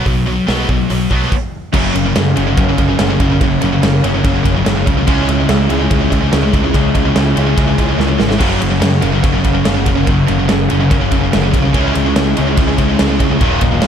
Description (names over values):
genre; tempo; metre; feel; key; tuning
heavy metal; 144 BPM; 4/4; straight; unclear; A4 = 440 Hz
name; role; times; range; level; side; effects
heavy high-gain guitar; riff; 0.0-13.9 s; Eb2 to Db4; -20 LUFS; right 11 dB; distortion
high-gain distorted guitar; riff; 0.0-13.9 s; Eb2 to Db4; -18 LUFS; left 9 dB; distortion
picked electric bass; bass; 0.1-13.9 s; Eb1 to Gb2; -18 LUFS; equal; none
big rock drum kit; drums; 0.1-13.9 s; crash cymbal, hi-hat, kick drum, ride cymbal, snare drum; -17 LUFS; equal; none
hollow soft pad; sustained chords; 1.7-13.9 s; Ab4 to Eb6; -28 LUFS; equal; ensemble chorus
crunchy overdriven guitar; riff; 1.7-13.9 s; Eb2 to Ab4; -18 LUFS; right 1 dB; none
room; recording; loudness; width
small room ambience; dark, warm production; -11 LUFS; side -8 dB against mid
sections
0.0-1.7 A section; 1.7-13.9 B section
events
stop 1.3-1.7; drum fill 8.0-8.4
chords
0.0 B5; 1.3 N.C.; 1.7 Gb; 5.1 Dbm; 8.4 Gb; 11.7 Dbm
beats
| 0.06 0.48 0.90 1.32 | 1.74 2.16 2.57 2.99 | 3.41 3.83 4.24 4.66 | 5.08 5.49 5.91 6.33 | 6.75 7.16 7.58 8.00 | 8.41 8.83 9.25 9.66 | 10.08 10.50 10.91 11.33 | 11.75 12.16 12.58 13.00 | 13.41 13.83